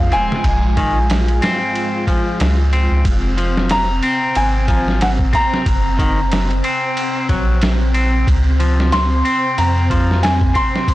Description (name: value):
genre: trip hop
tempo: 92 BPM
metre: 4/4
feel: swing 57% on 16ths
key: unclear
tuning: A4 = 440 Hz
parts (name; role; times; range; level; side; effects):
- felt-muted upright piano; melody; 0.0-10.9 s; F5 to C6; -21 LUFS; left 1 dB; tape echo
- string machine, cellos; sustained chords; 0.0-10.9 s; Ab3 to F4; -24 LUFS; right 1 dB; ensemble chorus, vintage 12-bit sampler grit
- soft dub sub bass; bass; 0.0-10.9 s; F1 to F2; -16 LUFS; equal; none
- clean electric guitar; arpeggios; 0.1-10.9 s; Eb3 to C4; -22 LUFS; left 2 dB; tape echo
- boom bap sampler-style drum kit; drums; 0.1-10.9 s; kick drum, ride cymbal, snare drum; -20 LUFS; equal; none
room: digital ambience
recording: blown-out, overdriven recording, vinyl crackle, overdrive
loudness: -14 LUFS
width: side -16 dB against mid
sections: 0.0-10.9 A section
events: none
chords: 0.4 Bbm9; 3.1 Fm; 5.7 Gb; 8.3 Dbmaj7